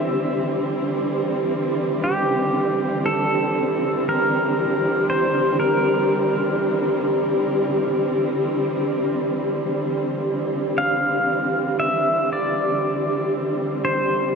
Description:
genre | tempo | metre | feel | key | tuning
ambient | 58 BPM | 4/4 | straight | unclear | A4 = 441 Hz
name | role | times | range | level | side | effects
pedal steel guitar | melody | 0.0-14.4 s | G4 to F5 | -24 LUFS | equal | diffuse ambient delay
dark studio string section | sustained chords | 0.0-14.4 s | D3 to C4 | -20 LUFS | right 1 dB | stereo widening
room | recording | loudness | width
wet cathedral reverb, RT60 5.6 s | cassette tape, nothing above 10.5 kHz | -19 LUFS | side -5 dB against mid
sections
0.0-10.2 A section; 10.2-14.4 B section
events
none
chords
0.0 D9sus4

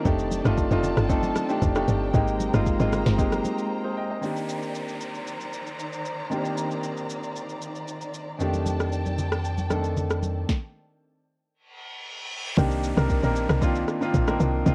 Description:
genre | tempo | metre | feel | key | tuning
amapiano | 115 BPM | 4/4 | straight | unclear | A4 = 439 Hz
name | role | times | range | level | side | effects
clear grand piano | accompaniment | 0.0-14.7 s | Eb3 to G5 | -30 LUFS | equal | plate reverb
dark studio string section | sustained chords | 0.0-10.5 s | Eb3 to Bb5 | -37 LUFS | equal | sidechain pumping, plate reverb
tight log drum bass | bass | 0.1-3.4, 12.6-14.7 s | F1 to C2 | -27 LUFS | equal | none
smooth R&B drum kit | drums | 0.1-14.7 s | kick drum, rim click, shaker, snare drum | -31 LUFS | equal | overdrive
congas | percussion | 0.3-3.6, 8.5-10.4 s | none | -37 LUFS | equal | none
downlifter and reverse cymbal | sound effects | 4.2-14.7 s | none | -42 LUFS | equal | none
punchy sub bass | bass | 8.4-10.4 s | F2 | -30 LUFS | equal | none
room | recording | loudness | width
light reverb | worn, warbling old tape, cassette tape, warbly pitch drift | -26 LUFS | mono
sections
0.0-4.2 A section; 4.2-12.6 B section; 12.6-14.7 A section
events
drop 0.0-4.2, 12.6-14.7; break 3.7-4.2; stop 10.5-12.6; reverse cymbal 11.7-12.6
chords
0.1 F13; 2.1 Abmaj9; 4.2 Cm9; 8.4 F13; 10.5 N.C.; 12.6 Cm9

